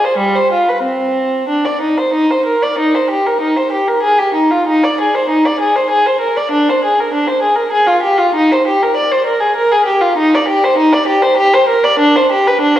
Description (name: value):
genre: classical, baroque-style suite movement for unaccompanied violin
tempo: 91-101 BPM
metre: 3/4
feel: rubato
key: Eb major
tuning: A4 = 440 Hz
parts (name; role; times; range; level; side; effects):
- dark violin; solo; 0.0-12.8 s; G3 to D5; -11 LUFS; equal; none
room: wet concert hall reverb, RT60 1.9 s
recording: heard from further back in the room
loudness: -11 LUFS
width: side -12 dB against mid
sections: 0.0-2.8 A section; 2.8-12.8 A section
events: none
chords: none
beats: 0.19 | 0.84 1.50 2.14 | 2.79 3.41 4.03 | 4.67 5.29 5.90 | 6.51 7.11 7.71 | 8.34 8.96 9.56 | 10.16 10.77 11.37 | 11.99 12.61